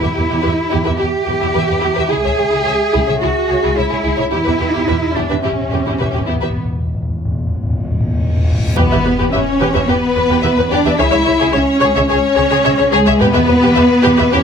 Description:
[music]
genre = cinematic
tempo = 108 BPM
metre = 4/4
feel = straight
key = E dorian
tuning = A4 = 439 Hz
[part]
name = rich symphonic violin section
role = melody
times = 0.0-14.4 s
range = G4 to E5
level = -23 LUFS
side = left 6 dB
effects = none
[part]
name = warm symphonic violin section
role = second line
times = 0.0-14.4 s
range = E4 to E5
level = -22 LUFS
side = left 4 dB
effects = none
[part]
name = warm symphonic viola section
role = accompaniment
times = 0.0-14.4 s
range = G4 to C#5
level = -21 LUFS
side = equal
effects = none
[part]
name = dark French horn section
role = sustained chords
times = 0.0-14.4 s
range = G#3 to E5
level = -20 LUFS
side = left 4 dB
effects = none
[part]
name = warm symphonic cello section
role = bass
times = 0.0-14.4 s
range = G#3 to G#4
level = -17 LUFS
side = right 2 dB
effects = none
[part]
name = warm symphonic double bass section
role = bass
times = 0.0-14.4 s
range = C#2 to E2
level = -20 LUFS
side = right 3 dB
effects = none
[part]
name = timpani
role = percussion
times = 0.0-0.7, 4.3-8.7, 13.2-14.0 s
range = E2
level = -20 LUFS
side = left 1 dB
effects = none
[part]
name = reverse cymbal and impact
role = sound effects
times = 8.5-11.0 s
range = none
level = -24 LUFS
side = equal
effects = none
[part]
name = mellow hollow silver concert flute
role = second line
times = 8.8-14.4 s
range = G#4 to E5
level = -21 LUFS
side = left 2 dB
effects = none
[sound]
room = light reverb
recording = close, detailed microphones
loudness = -12 LUFS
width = side -7 dB against mid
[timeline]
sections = 0.0-8.8 A section; 8.8-14.4 A section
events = timpani fill 4.3-8.8; reverse cymbal 8.5-8.8; impact 8.8-11.0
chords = 0.0 Em; 2.1 C#m; 4.3 Em; 11.0 C#m; 13.2 Em

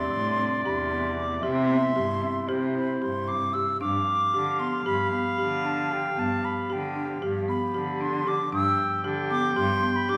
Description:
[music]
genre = contemporary instrumental, chamber music in an uneven meter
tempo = 229 BPM (eighths)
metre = 9/8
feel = straight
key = unclear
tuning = A4 = 440 Hz
[part]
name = mellow hollow silver concert flute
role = melody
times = 0.0-10.2 s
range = G5 to E6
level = -31 LUFS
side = equal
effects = none
[part]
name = warm clarinet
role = second line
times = 0.0-10.2 s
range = C5 to G5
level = -33 LUFS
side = equal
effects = none
[part]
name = mellow woodwind section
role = sustained chords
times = 0.0-10.2 s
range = C3 to G4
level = -39 LUFS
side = equal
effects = none
[part]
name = folk marimba with medium mallets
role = arpeggios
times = 0.0-10.2 s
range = B3 to G4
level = -33 LUFS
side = equal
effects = none
[part]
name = rich cello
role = bass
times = 0.0-10.2 s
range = E2 to D3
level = -33 LUFS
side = equal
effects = none
[sound]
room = moderate scoring stage reverb, RT60 1.8 s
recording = none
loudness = -26 LUFS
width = mono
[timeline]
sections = 0.0-3.8 A section; 3.8-10.2 B section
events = none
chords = 0.0 Am11; 1.4 C; 3.8 G7

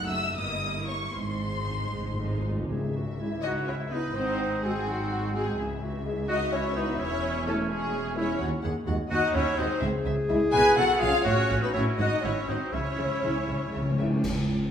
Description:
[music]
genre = classical, dramatic, fast romantic movement for symphony orchestra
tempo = 76-86 BPM (dotted quarters)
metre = 6/8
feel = straight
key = C# minor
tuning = A4 = 440 Hz
[part]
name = dark symphonic violin section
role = melody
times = 0.0-14.1 s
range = E5 to E6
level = -38 LUFS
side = left 3 dB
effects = none
[part]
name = warm symphonic violin section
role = second line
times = 0.0-14.0 s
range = F#4 to G#5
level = -30 LUFS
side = left 2 dB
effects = none
[part]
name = rich symphonic viola section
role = accompaniment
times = 0.0-14.0 s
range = F#3 to G#4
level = -34 LUFS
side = right 2 dB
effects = none
[part]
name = rich studio double bass section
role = bass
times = 0.0-14.1 s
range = E1 to D#2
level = -34 LUFS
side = right 2 dB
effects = none
[part]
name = rich symphonic cello section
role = bass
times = 0.0-14.1 s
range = C#2 to C#3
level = -35 LUFS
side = right 2 dB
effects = none
[part]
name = timpani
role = percussion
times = 1.2-6.2, 9.8-14.7 s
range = G#2 to C#3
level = -32 LUFS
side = equal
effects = none
[part]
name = clear clarinet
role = second line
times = 2.7-13.8 s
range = B#3 to G#4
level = -34 LUFS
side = left 2 dB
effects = none
[part]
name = mellow French horn section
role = sustained chords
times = 3.2-14.1 s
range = G#3 to F#4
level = -35 LUFS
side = left 1 dB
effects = none
[part]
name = clear oboe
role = second line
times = 3.4-14.0 s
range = B#3 to B4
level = -35 LUFS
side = right 2 dB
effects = none
[part]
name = silver concert flute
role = second line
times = 3.4-14.0 s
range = B#3 to B4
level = -35 LUFS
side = left 2 dB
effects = none
[part]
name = cymbal swell, clash cymbals and concert bass drum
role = percussion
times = 11.3-14.7 s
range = none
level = -38 LUFS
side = equal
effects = none
[sound]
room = wet recital hall reverb, RT60 1.6 s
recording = recorded in a church or concert hall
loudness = -25 LUFS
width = side -8 dB against mid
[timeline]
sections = 0.0-2.7 A section; 2.7-14.2 B section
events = timpani fill 1.1-2.7, 12.7-14.2; band accent 14.2-14.7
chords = 0.4 D#7b9/G; 1.1 G#; 2.7 C#m; 4.2 G#7; 5.6 C#m; 7.0 C#m/E; 8.4 N.C.; 9.8 C#m; 10.5 C#7/B (rootless); 11.3 F#m; 12.0 G#7; 12.7 C#m

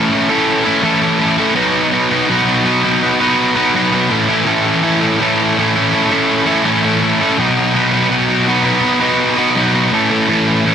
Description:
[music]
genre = rock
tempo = 82 BPM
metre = 4/4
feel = straight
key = unclear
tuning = A4 = 439 Hz
[part]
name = thick fuzz guitar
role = solo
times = 0.0-10.7 s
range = A2 to B4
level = -12 LUFS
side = equal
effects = distortion
[sound]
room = light reverb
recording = none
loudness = -11 LUFS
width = side -8 dB against mid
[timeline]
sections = 0.0-10.7 A section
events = none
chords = 0.0 A; 1.6 B; 4.1 A; 7.4 B; 9.9 A

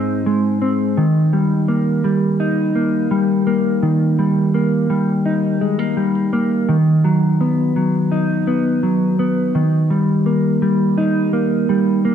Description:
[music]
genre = dream pop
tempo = 84 BPM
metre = 4/4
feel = straight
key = unclear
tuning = A4 = 442 Hz
[part]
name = mellow electric guitar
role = solo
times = 0.0-12.1 s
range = Ab2 to Eb4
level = -15 LUFS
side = equal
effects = analog chorus
[sound]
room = wet lush hall reverb, RT60 2.2 s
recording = dark, warm production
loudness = -15 LUFS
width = side -8 dB against mid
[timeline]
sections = 0.0-12.1 A section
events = none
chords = 0.0 Ab; 1.0 Eb; 6.7 B/D#; 9.5 Eb

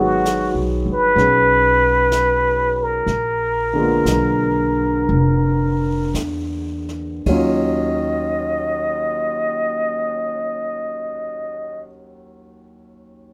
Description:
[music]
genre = jazz ballad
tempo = 52-66 BPM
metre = 4/4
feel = swing 69% on 8ths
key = Eb minor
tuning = A4 = 440 Hz
[part]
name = trumpet with plunger mute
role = melody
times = 0.0-11.9 s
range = Gb4 to Eb5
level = -21 LUFS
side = equal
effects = none
[part]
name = warm grand piano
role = accompaniment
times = 0.0-13.3 s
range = Eb2 to Ab4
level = -25 LUFS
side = equal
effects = none
[part]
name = upright bass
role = bass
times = 0.0-11.8 s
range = F1 to Fb2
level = -26 LUFS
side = equal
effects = none
[part]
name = jazz brush drum kit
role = drums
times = 0.3-8.2 s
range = brushed snare drum, hi-hat, kick drum, ride cymbal, snare drum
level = -33 LUFS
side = equal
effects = none
[sound]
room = light reverb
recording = none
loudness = -19 LUFS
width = mono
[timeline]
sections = 0.0-7.3 A section; 7.3-11.9 B section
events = slowing down 0.0-7.3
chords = 0.0 Abm7; 3.1 Bb7b9; 7.3 Ebm9

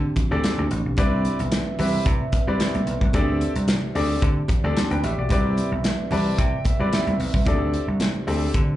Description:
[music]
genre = early-eighties boogie funk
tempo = 111 BPM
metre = 4/4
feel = straight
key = unclear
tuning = A4 = 440 Hz
[part]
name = glass harmonica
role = sustained chords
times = 0.0-8.8 s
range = C4 to E5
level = -31 LUFS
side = right 2 dB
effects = none
[part]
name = vintage slap bass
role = bass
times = 0.0-8.7 s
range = A1 to D3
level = -24 LUFS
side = equal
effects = none
[part]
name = modern studio drum kit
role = drums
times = 0.2-8.7 s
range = hi-hat, kick drum, snare drum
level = -24 LUFS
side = equal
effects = none
[part]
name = congas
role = percussion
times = 0.2-8.1 s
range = none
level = -32 LUFS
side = right 2 dB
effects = none
[part]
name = clear baby grand piano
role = accompaniment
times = 0.3-8.6 s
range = C4 to A5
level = -26 LUFS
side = left 1 dB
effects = slapback echo
[sound]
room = light reverb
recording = live gig heard through the venue's PA, club reverb, nothing above 10.4 kHz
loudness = -20 LUFS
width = side -14 dB against mid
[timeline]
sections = 0.0-8.8 A section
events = grand piano fill 5.8-7.5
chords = 0.0 D7sus4; 1.0 Cmaj9; 3.1 D7sus4; 5.3 Cmaj9; 7.5 D7sus4

